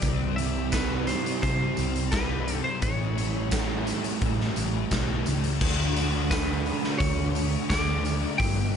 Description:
rock, shoegaze and dream pop; 86 BPM; 4/4; straight; D major; A4 = 441 Hz
twelve-string electric guitar; melody; 0.0-8.8 s; B4 to G5; -33 LUFS; left 1 dB; tape echo
crunchy overdriven guitar; riff; 0.0-8.8 s; G2 to G4; -31 LUFS; right 11 dB; reverse reverb
thick fuzz guitar; riff; 0.0-8.8 s; G2 to D4; -32 LUFS; left 13 dB; distortion, ensemble chorus
hollow-body short-scale picked electric bass; bass; 0.0-8.8 s; G1 to C3; -29 LUFS; equal
raw garage drum kit; drums; 0.0-8.6 s; crash cymbal, hi-hat, kick drum, snare drum; -29 LUFS; equal
tambourine; percussion; 0.0-8.5 s; -41 LUFS; right 8 dB
small room ambience; nothing above 11.0 kHz; -24 LUFS; side -7 dB against mid
0.0-5.6 A section; 5.6-8.8 B section
0.0 C; 2.8 A7; 5.6 Dmaj7

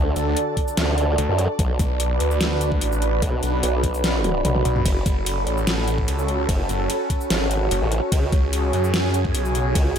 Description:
heavy wobble dubstep; 147 BPM; 4/4; half-time; F# minor; A4 = 440 Hz
supersaw pad; sustained chords; 0.0-10.0 s; C#3 to A5; -27 LUFS; equal; phaser, sidechain pumping, low-pass filter
formant-sweep wobble bass; bass; 0.0-9.9 s; F#1 to F#2; -22 LUFS; equal; chorus, overdrive
ethereal airy pad; texture; 0.0-10.0 s; F#4 to B5; -27 LUFS; right 3 dB; ensemble chorus, built-in reverb, sidechain pumping
snarling distorted saw bass; bass; 0.2-10.0 s; F#1 to F#2; -23 LUFS; equal; distortion, overdrive
dubstep drum kit; drums; 0.2-10.0 s; hi-hat, ride cymbal, shaker, snare drum, toms; -26 LUFS; left 1 dB; overdrive
electronic kick drum; drums; 0.6-9.8 s; -22 LUFS; equal; overdrive
light reverb, digital ambience; -19 LUFS; side -8 dB against mid
0.0-10.0 A section
drum fill 4.2-4.9
0.0 D; 1.6 Bm; 4.9 F#m; 8.1 C#sus4

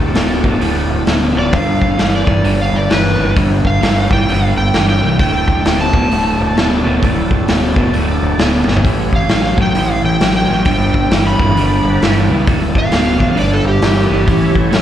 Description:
blues rock power trio and southern rock; 132 BPM; 4/4; swing 62% on 8ths; D major; A4 = 438 Hz
overdriven tonewheel organ; sustained chords; 0.0-14.8 s; E3 to D5; -27 LUFS; right 2 dB; chorus vibrato, slow rotary speaker
crunchy overdriven guitar; riff; 0.0-14.8 s; D2 to F#3; -16 LUFS; equal; slapback echo
growling fingered electric bass; bass; 0.0-14.8 s; D1 to C#2; -18 LUFS; equal; overdrive
raw garage drum kit; drums; 0.1-14.8 s; hi-hat, kick drum, snare drum, toms; -16 LUFS; equal
overdriven slide guitar; melody; 1.4-14.6 s; G4 to B5; -19 LUFS; right 2 dB; slapback echo
small room ambience; live gig heard through the venue's PA, club reverb; -11 LUFS; side -11 dB against mid
0.0-14.8 A section
drum fill 8.6
0.0 D; 1.5 G; 5.2 D; 8.8 A; 10.7 G; 12.5 D; 13.4 G; 14.3 A

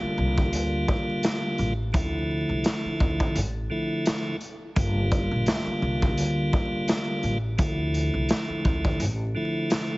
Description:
hip hop, boom-bap hip-hop; 85 BPM; 4/4; swing 56% on 16ths; D minor; A4 = 437 Hz
tonewheel organ; accompaniment; 0.0-10.0 s; D3 to F4; -27 LUFS; equal; overdrive, stopped rotary speaker, high-pass filter, low-pass filter
upright bass; bass; 0.0-9.3 s; G1 to D2; -28 LUFS; equal
raw garage drum kit; drums; 0.4-9.9 s; hi-hat, kick drum, snare drum; -27 LUFS; equal
small room ambience; heavily compressed radio sound, vinyl crackle, nothing above 7.8 kHz, faint mains hum; -23 LUFS; side -21 dB against mid
0.0-10.0 A section
0.0 Gm7; 1.9 Dmadd9; 4.8 Gm7; 7.6 Dmadd9

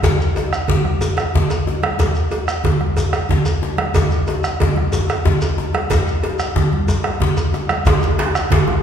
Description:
west african traditional, West African drum ensemble; 123 BPM (dotted quarters); 12/8; straight
bombo; percussion; 0.0-8.8 s; -20 LUFS; right 1 dB
congas; percussion; 0.0-8.8 s; -22 LUFS; right 3 dB
cowbell; percussion; 0.0-8.7 s; -25 LUFS; right 1 dB
djembe; percussion; 0.0-8.8 s; -21 LUFS; left 3 dB
shekere; percussion; 0.0-8.5 s; -25 LUFS; left 1 dB
djembe; percussion; 7.9-8.8 s; -20 LUFS; right 2 dB
wet recital hall reverb, RT60 1.6 s; recorded in a church or concert hall; -15 LUFS; side -8 dB against mid
0.0-7.9 A section

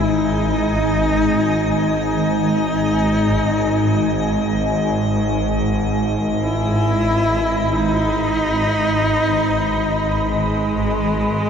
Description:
dark ambient drone; free time; G# minor; A4 = 445 Hz
bright horsehead fiddle; melody; 0.0-11.5 s; G#3 to E4; -21 LUFS; equal; shimmer reverb, ping-pong delay
sweeping resonant pad; sustained chords; 0.0-11.5 s; G#3 to B5; -22 LUFS; equal; chorus, shimmer reverb
swarming drone; drone; 0.0-11.5 s; G#1 to G#2; -20 LUFS; equal; built-in reverb
icy glass pad; texture; 0.0-11.5 s; G#3 to D#5; -27 LUFS; right 1 dB; chorus, built-in reverb, shimmer reverb
wet cathedral reverb, RT60 7.1 s; -16 LUFS; side -7 dB against mid
0.0-11.5 A section
0.0 G#5

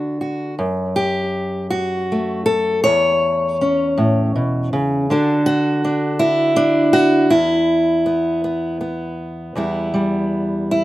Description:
folk, solo fingerstyle acoustic guitar; 53 BPM (dotted quarters); 6/8; straight; E dorian; A4 = 441 Hz
fingerpicked steel-string acoustic guitar; solo; 0.0-10.8 s; E2 to C#5; -16 LUFS; equal
little or no reverb; recorded outdoors, with no room sound; -16 LUFS; side -16 dB against mid
0.0-9.6 A section; 9.6-10.8 B section
0.0 D; 0.6 F#m; 2.9 A/E; 5.1 Dadd9; 7.3 E5; 9.6 Em

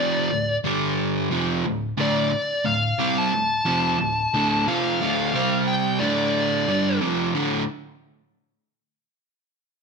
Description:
rock; 89 BPM; 4/4; straight; D minor; A4 = 436 Hz
bluesy overdriven lead guitar; melody; 0.0-7.0 s; D5 to A5; -23 LUFS; left 1 dB; distortion, slapback echo
overdriven semi-hollow guitar; riff; 0.0-7.6 s; D2 to C4; -22 LUFS; right 1 dB
moderate large studio reverb, RT60 1.1 s; -20 LUFS; side -4 dB against mid
0.0-7.4 A section; 7.4-9.8 B section
0.0 Dm; 0.6 G5; 1.3 Dm; 5.3 C5; 6.0 Dm; 7.4 D5

